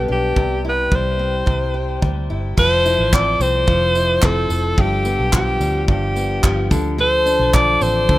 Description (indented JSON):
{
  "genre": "acoustic pop",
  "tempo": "109 BPM",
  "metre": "4/4",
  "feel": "straight",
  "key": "unclear",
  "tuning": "A4 = 435 Hz",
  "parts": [
    { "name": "edgy alto saxophone", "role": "melody", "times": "0.0-8.2 s", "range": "G4 to D5", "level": "-18 LUFS", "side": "equal", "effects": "ping-pong delay" },
    { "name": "picked steel-string acoustic guitar", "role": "accompaniment", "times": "0.0-8.2 s", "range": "G2 to A4", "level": "-23 LUFS", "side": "left 2 dB", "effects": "none" },
    { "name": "vintage muted fingered electric bass", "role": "bass", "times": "0.0-8.2 s", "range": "F1 to D2", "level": "-22 LUFS", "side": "right 1 dB", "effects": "none" },
    { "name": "modern studio drum kit", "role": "drums", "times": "0.4-8.2 s", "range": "crash cymbal, handclaps, kick drum, tambourine", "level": "-19 LUFS", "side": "right 1 dB", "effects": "none" }
  ],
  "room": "small room ambience",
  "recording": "rough home demo mix, faint mains hum",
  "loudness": "-15 LUFS",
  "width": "side -16 dB against mid",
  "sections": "0.0-2.6 A section; 2.6-8.2 B section",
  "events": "none",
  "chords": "0.4 C; 2.6 Fmaj7; 4.8 G7; 6.7 Dm7"
}